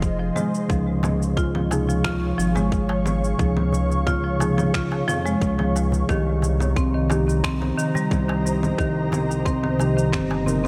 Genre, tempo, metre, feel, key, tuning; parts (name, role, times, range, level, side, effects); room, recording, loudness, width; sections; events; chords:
organic downtempo; 89 BPM; 4/4; straight; A4 = 439 Hz
muted felt-like synth keys; accompaniment; 0.0-10.7 s; C3 to Bb4; -31 LUFS; equal; chorus, sidechain pumping, tape echo
ethereal airy pad; sustained chords; 0.0-10.7 s; G4 to Db6; -33 LUFS; equal; ensemble chorus, built-in reverb, sidechain pumping
smooth synth bass; bass; 0.0-10.7 s; F1 to F2; -27 LUFS; equal; sidechain pumping
electronic cabasa, congas and finger snaps; drums; 0.0-10.7 s; -32 LUFS; equal; studio reverb
electronic kick drum; drums; 0.0-10.3 s; -27 LUFS; equal; studio reverb
marimba with medium hard mallets; arpeggios; 0.2-10.7 s; Eb3 to F4; -26 LUFS; equal; tape echo
darbuka; percussion; 1.0-10.6 s; -35 LUFS; equal
light reverb; -22 LUFS; mono
0.0-10.7 A section
0.0 Fm; 0.7 Db; 6.1 Cm7